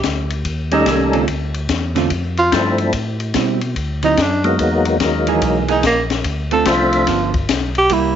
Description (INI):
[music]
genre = soul jazz organ trio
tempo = 145 BPM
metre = 4/4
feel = swing 65% on 8ths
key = unclear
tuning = A4 = 440 Hz
[part]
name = tonewheel organ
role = bass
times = 0.0-8.2 s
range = G1 to B2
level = -22 LUFS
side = equal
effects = overdrive, chorus vibrato, slow rotary speaker
[part]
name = open jazz drum kit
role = drums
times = 0.0-8.0 s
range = hi-hat, kick drum, ride cymbal, snare drum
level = -22 LUFS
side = left 5 dB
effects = none
[part]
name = breathy tenor saxophone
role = melody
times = 0.7-8.2 s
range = Bb3 to A4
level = -18 LUFS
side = right 2 dB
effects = none
[part]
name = percussive tonewheel organ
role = melody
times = 0.7-7.1 s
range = F3 to E5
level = -18 LUFS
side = left 2 dB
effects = overdrive, chorus vibrato, slow rotary speaker
[part]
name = archtop guitar, miked and amplified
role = accompaniment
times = 0.7-8.2 s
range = D3 to G#4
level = -21 LUFS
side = right 11 dB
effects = none
[sound]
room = moderate plate reverb, RT60 1.3 s, small room ambience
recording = 1960s-style stereo, nothing above 7.7 kHz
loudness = -15 LUFS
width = side -9 dB against mid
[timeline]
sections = 0.0-8.2 A section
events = tenor saxophone solo 0.0-8.2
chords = 0.5 Eb7#11; 1.3 Dm7; 2.9 Am7; 3.8 D9; 4.6 Emaj9#11; 6.2 Dm7; 7.1 G7